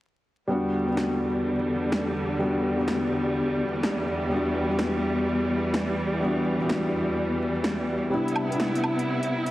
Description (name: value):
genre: future garage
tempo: 126 BPM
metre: 4/4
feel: swing 67% on 16ths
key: E minor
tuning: A4 = 440 Hz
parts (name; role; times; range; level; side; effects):
- felt-muted upright piano; accompaniment; 0.5-9.5 s; G3 to F#4; -27 LUFS; left 1 dB; analog delay
- clear studio string section; sustained chords; 0.5-9.5 s; E2 to E4; -27 LUFS; equal; vintage 12-bit sampler grit
- deep house drum kit; drums; 1.0-9.5 s; hi-hat, snare drum, woodblock; -30 LUFS; equal; overdrive
room: moderate lush hall reverb, RT60 1.7 s, small room ambience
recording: heavily compressed radio sound, vinyl crackle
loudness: -24 LUFS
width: side -16 dB against mid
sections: 0.5-9.5 A section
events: none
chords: 0.5 Em7; 8.1 Cmaj7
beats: | 0.50 0.98 1.45 1.93 | 2.41 2.88 3.36 3.83 | 4.31 4.79 5.26 5.74 | 6.22 6.69 7.17 7.64 | 8.12 8.60 9.07